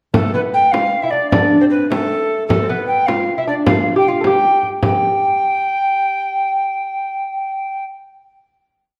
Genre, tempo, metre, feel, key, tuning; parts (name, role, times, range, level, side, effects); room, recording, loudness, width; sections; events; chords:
medieval dance; 104 BPM (dotted quarters); 6/8; straight; G mixolydian; A4 = 440 Hz
mellow alto recorder; melody; 0.1-7.8 s; A4 to G5; -19 LUFS; equal
lute; second line; 0.1-8.3 s; A3 to A4; -21 LUFS; equal
frame drum; percussion; 0.1-5.0 s; -22 LUFS; equal
wet recital hall reverb, RT60 1.4 s; dark, warm production; -17 LUFS; mono
0.1-4.8 A section; 4.8-7.1 final note
speeding up 0.1-7.1